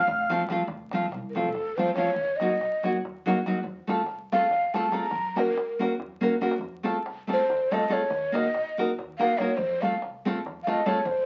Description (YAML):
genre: balkan folk, Balkan wedding band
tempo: 283 BPM (eighths)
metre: 7/8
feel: straight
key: F phrygian dominant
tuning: A4 = 440 Hz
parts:
  - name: breathy mellow ney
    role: melody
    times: 0.0-11.3 s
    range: A4 to Bb5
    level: -28 LUFS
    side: equal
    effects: none
  - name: upright bass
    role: bass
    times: 0.1-11.3 s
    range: F1 to Gb2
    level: -46 LUFS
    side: equal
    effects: none
  - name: darbuka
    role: percussion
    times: 0.1-11.2 s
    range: none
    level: -43 LUFS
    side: equal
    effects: none
  - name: nylon-string guitar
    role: accompaniment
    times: 0.3-11.0 s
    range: F3 to Bb4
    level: -29 LUFS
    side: equal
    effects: none
room: moderate studio reverb, RT60 0.6 s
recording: very old 78 rpm record, vinyl crackle, nothing above 7.7 kHz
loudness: -27 LUFS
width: mono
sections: 0.7-11.3 A section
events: ney solo 0.7-11.3; drum fill 6.2-6.6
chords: 0.0 F; 2.2 Ebm; 3.6 F; 5.1 Gb; 6.6 F; 8.1 Ebm; 9.6 F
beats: 0.05 0.26 0.47 | 0.68 0.89 1.10 1.31 1.53 1.74 1.95 | 2.16 2.37 2.58 2.79 3.00 3.22 3.43 | 3.64 3.85 4.06 4.28 4.49 4.70 4.91 | 5.12 5.33 5.55 5.76 5.97 6.18 6.39 | 6.61 6.82 7.03 7.24 7.45 7.67 7.88 | 8.09 8.30 8.51 8.72 8.94 9.15 9.36 | 9.57 9.78 10.00 10.21 10.42 10.63 10.84 | 11.05